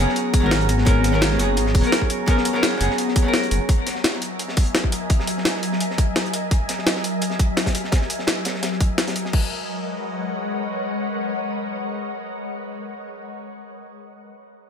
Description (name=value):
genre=liquid drum and bass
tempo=170 BPM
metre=4/4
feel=straight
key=G# minor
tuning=A4 = 440 Hz
part: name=archtop guitar, miked and amplified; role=accompaniment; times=0.0-3.7 s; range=F#3 to A#4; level=-24 LUFS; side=equal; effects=ping-pong delay
part: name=glassy FM pad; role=sustained chords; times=0.0-12.9 s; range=F#3 to A#5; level=-26 LUFS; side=left 2 dB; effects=ensemble chorus, built-in reverb, sidechain pumping
part: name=vibraphone with hard mallets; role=arpeggios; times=0.0-3.7 s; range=G#4 to G#5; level=-28 LUFS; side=right 4 dB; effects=ping-pong delay
part: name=dark detuned saw bass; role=bass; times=0.0-3.6 s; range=D#1 to G#1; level=-21 LUFS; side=equal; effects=tube saturation
part: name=crunchy breakbeat drum kit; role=drums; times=0.1-9.3 s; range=hi-hat, snare drum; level=-30 LUFS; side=equal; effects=high-pass filter on hats, studio reverb, high-pass filter on snare, high-pass filter on room
part: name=jungle sampler-style drum kit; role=drums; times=0.2-9.4 s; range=crash cymbal, hi-hat, snare drum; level=-24 LUFS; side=left 1 dB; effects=studio reverb
part: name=electronic kick drum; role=drums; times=0.3-9.4 s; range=none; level=-19 LUFS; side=equal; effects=overdrive, studio reverb
room=studio ambience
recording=none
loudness=-19 LUFS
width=side -7 dB against mid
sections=0.0-9.3 A section; 9.3-12.2 B section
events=none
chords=0.0 G#m11; 3.7 F#13; 9.3 G#m11